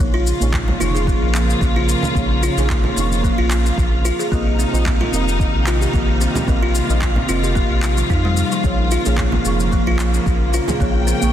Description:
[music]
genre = organic downtempo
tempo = 111 BPM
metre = 4/4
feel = swing 54% on 16ths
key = Bb dorian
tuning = A4 = 440 Hz
[part]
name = deep mellow chord stab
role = accompaniment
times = 0.0-11.3 s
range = Bb3 to Db6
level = -27 LUFS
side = right 4 dB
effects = chorus, phaser, sidechain pumping, tape echo
[part]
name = dark studio string section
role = sustained chords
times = 0.0-11.3 s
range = C3 to G5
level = -23 LUFS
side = equal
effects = sidechain pumping
[part]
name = buzzing kalimba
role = arpeggios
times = 0.0-11.2 s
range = F3 to Ab4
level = -23 LUFS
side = left 1 dB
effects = tape echo
[part]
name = round analog bass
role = bass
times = 0.0-11.3 s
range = F1 to F2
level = -19 LUFS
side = equal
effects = none
[part]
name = electronic shaker and handclaps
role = drums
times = 0.0-11.3 s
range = none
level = -28 LUFS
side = left 2 dB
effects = studio reverb
[part]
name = wind-like tuned noise texture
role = texture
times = 1.2-11.3 s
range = F4 to F5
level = -31 LUFS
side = right 1 dB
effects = built-in reverb
[part]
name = electronic kick drum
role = drums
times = 0.5-10.9 s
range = none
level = -21 LUFS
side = equal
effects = studio reverb
[part]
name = frame drum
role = percussion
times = 0.5-10.8 s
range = none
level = -28 LUFS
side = right 2 dB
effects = none
[sound]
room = light reverb, studio reverb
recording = dense, heavily limited modern master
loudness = -15 LUFS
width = side -10 dB against mid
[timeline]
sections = 0.0-11.3 A section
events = none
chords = 0.0 Bbm; 4.3 Cm; 8.6 Bbm

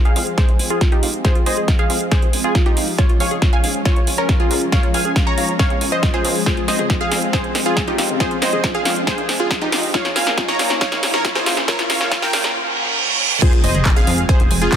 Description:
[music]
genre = uplifting trance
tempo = 138 BPM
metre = 4/4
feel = straight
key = F minor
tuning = A4 = 439 Hz
[part]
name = lush unison pad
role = sustained chords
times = 0.0-14.8 s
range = F3 to Db4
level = -27 LUFS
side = left 2 dB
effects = chorus, phaser, sidechain pumping
[part]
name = riser, reverse cymbal and impact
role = sound effects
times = 4.0-14.8 s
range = none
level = -25 LUFS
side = right 2 dB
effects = none
[part]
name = supersaw stab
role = melody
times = 0.1-14.8 s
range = Db4 to Bb5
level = -21 LUFS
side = right 1 dB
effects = sidechain pumping, low-pass filter, digital delay
[part]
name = big-room dance drum kit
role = drums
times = 0.1-14.8 s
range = crash cymbal, handclaps, hi-hat, snare drum, toms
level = -22 LUFS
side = right 1 dB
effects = sidechain pumping on hats, high-pass filter on hats, sidechain pumping on toms, high-pass filter on toms, high-pass filter on snare, sidechain pumping on cymbals, high-pass filter on cymbals
[part]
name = analog pluck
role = arpeggios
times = 0.2-14.8 s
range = F4 to Bb5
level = -27 LUFS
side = left 2 dB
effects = chorus, phaser, sidechain pumping, digital delay
[part]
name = plucky analog bass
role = bass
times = 0.2-14.7 s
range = F1 to Bb2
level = -27 LUFS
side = equal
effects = sidechain pumping, high-pass filter
[part]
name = electronic kick drum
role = drums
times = 0.4-14.8 s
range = none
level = -17 LUFS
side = equal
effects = none
[sound]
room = light reverb, digital ambience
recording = dense, heavily limited modern master, high-pass filter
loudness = -15 LUFS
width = side -9 dB against mid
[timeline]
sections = 0.0-13.4 A section; 13.4-14.8 B section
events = build-up 0.0-13.4; drum fill 0.0-12.6; filter sweep on supersaw synth 0.0-13.4; filter sweep 0.0-13.4; reverse cymbal 12.6-13.4; drop 13.4-14.8; impact 13.4-14.8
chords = 0.0 Fm; 3.0 Db; 6.5 Fm; 9.9 Bbm; 13.4 Fm

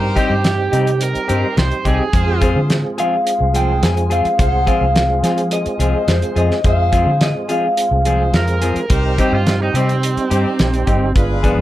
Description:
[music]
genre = straight-eighth soul blues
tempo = 106 BPM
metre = 4/4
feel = straight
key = C minor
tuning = A4 = 439 Hz
[part]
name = electric guitar through a small old amp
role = melody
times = 0.0-9.2 s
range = C5 to Ab5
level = -18 LUFS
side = left 2 dB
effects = spring reverb
[part]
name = overdriven slide guitar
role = second line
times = 0.0-2.4, 8.4-11.1 s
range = C4 to C5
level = -21 LUFS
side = right 4 dB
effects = slapback echo
[part]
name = tonewheel organ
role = accompaniment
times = 0.0-11.6 s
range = G3 to Ab4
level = -23 LUFS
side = right 3 dB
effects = overdrive, chorus vibrato, slow rotary speaker
[part]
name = bright horn section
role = sustained chords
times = 0.0-11.6 s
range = Eb4 to C5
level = -28 LUFS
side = left 1 dB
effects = none
[part]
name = vintage muted fingered electric bass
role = bass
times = 0.0-11.6 s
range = G1 to F3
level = -18 LUFS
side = equal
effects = none
[part]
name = clean electric guitar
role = stabs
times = 0.2-11.6 s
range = F3 to Ab4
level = -21 LUFS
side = left 4 dB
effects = none
[part]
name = warm soul drum kit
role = drums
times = 0.2-11.6 s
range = hi-hat, kick drum, snare drum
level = -19 LUFS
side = equal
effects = none
[sound]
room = light reverb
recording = none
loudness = -14 LUFS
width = side -14 dB against mid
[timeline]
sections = 0.0-11.6 A section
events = none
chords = 0.0 Cm; 2.1 Fm; 8.9 Cm

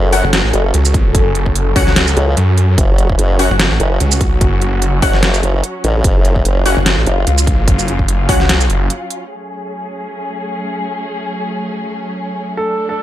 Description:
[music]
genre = heavy wobble dubstep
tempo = 147 BPM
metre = 4/4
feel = swing 55% on 16ths, half-time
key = F# harmonic minor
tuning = A4 = 440 Hz
[part]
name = dark studio string section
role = sustained chords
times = 0.0-13.0 s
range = F#3 to A4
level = -22 LUFS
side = left 1 dB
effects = sidechain pumping, low-pass filter
[part]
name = formant-sweep wobble bass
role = bass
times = 0.0-7.3 s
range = F#1 to C#2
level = -14 LUFS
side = equal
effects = chorus, overdrive
[part]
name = orchestra-hit-like synth stab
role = stabs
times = 0.1-8.4 s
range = C#4 to F#5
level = -19 LUFS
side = left 3 dB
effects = built-in reverb, ping-pong delay
[part]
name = dubstep drum kit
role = drums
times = 0.1-9.2 s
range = hi-hat, shaker, snare drum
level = -17 LUFS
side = right 1 dB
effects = none
[part]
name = snarling distorted saw bass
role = bass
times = 0.2-8.9 s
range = F#1 to F#2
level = -14 LUFS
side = equal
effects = distortion, overdrive
[part]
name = electronic kick drum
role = drums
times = 0.9-8.4 s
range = none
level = -15 LUFS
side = equal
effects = none
[part]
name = dark grand piano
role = melody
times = 12.6-13.0 s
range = A4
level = -16 LUFS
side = right 1 dB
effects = none
[sound]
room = little or no reverb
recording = dark, warm production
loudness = -12 LUFS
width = side -13 dB against mid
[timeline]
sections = 0.0-9.3 A section; 9.3-13.0 B section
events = drop 0.0-9.3; break 8.9-9.3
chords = 0.0 F#5; 9.3 F#madd9

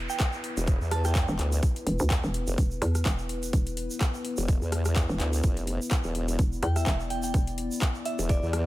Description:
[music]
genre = bass house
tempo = 126 BPM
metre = 4/4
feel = swing 56% on 16ths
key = unclear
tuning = A4 = 440 Hz
[part]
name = dark analog pad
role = sustained chords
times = 0.0-8.7 s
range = B3 to D5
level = -36 LUFS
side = left 3 dB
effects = chorus, sidechain pumping
[part]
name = hollow knocking FM bass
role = bass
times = 0.0-7.7 s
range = E1 to E2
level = -29 LUFS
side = equal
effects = sidechain pumping
[part]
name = downlifter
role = sound effects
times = 0.0-2.6 s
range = none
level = -42 LUFS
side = right 1 dB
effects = none
[part]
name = glassy synth bell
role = melody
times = 0.1-1.2, 6.6-8.7 s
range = D5 to A5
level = -34 LUFS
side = right 3 dB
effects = chorus, tape echo
[part]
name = tube shaker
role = percussion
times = 0.1-8.5 s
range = none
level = -41 LUFS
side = right 3 dB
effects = none
[part]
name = electronic kick drum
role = drums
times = 0.2-8.4 s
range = none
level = -25 LUFS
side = equal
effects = studio reverb
[part]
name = garage drum kit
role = drums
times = 0.2-8.6 s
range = handclaps, hi-hat, rim click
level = -34 LUFS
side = equal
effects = studio reverb
[part]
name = formant-sweep wobble bass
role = bass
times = 0.6-8.7 s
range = E1 to E2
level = -27 LUFS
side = equal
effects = chorus, sidechain pumping
[sound]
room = little or no reverb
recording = none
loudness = -25 LUFS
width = side -16 dB against mid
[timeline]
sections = 0.0-8.7 A section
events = none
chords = 0.0 E5

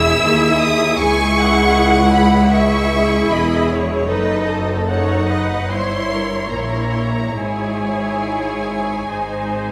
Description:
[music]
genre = classical, slow romantic movement for string orchestra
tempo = 68-80 BPM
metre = 4/4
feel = rubato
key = C# minor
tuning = A4 = 440 Hz
[part]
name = rich symphonic violin section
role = melody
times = 0.0-9.7 s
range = D#5 to E6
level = -24 LUFS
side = equal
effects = none
[part]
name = clear symphonic violin section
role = second line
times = 0.0-9.7 s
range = G#4 to G#5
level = -24 LUFS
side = equal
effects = none
[part]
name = clear symphonic viola section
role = accompaniment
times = 0.0-9.7 s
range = D#4 to Db5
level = -23 LUFS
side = equal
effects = none
[part]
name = rich symphonic cello section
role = bass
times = 0.0-9.7 s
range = C#2 to Bb2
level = -23 LUFS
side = equal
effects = none
[part]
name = rich symphonic double bass section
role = bass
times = 0.0-9.7 s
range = E1 to D#2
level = -25 LUFS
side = equal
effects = none
[sound]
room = wet scoring stage reverb, RT60 1.8 s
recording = none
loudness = -17 LUFS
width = mono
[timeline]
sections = 0.0-9.7 A section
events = none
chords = 0.0 C#m/E (rootless); 1.0 C#m; 4.1 D#dim/F#; 5.7 Gdim7; 7.4 C#m/G#; 9.1 G#

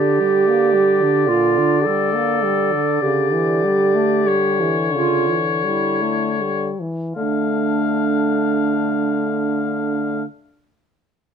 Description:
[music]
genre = classical, slow romantic movement for wind quintet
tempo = 38-55 BPM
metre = 3/4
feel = rubato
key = D minor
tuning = A4 = 440 Hz
[part]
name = warm oboe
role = second line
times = 0.0-10.2 s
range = C#5 to F5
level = -23 LUFS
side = left 8 dB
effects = none
[part]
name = warm French horn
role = accompaniment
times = 0.0-10.2 s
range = Bb2 to Bb3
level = -23 LUFS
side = left 4 dB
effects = none
[part]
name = warm clarinet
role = accompaniment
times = 0.0-10.2 s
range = D4 to A4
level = -19 LUFS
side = right 6 dB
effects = none
[part]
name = mellow bassoon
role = bass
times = 0.0-10.2 s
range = D3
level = -24 LUFS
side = equal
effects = none
[sound]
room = light reverb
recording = dark, warm production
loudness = -16 LUFS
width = side -7 dB against mid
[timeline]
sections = 0.0-7.2 A section; 7.2-11.3 B section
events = slowing down 0.0-7.2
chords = 0.0 Gm; 3.0 A7/C#; 7.2 Dm

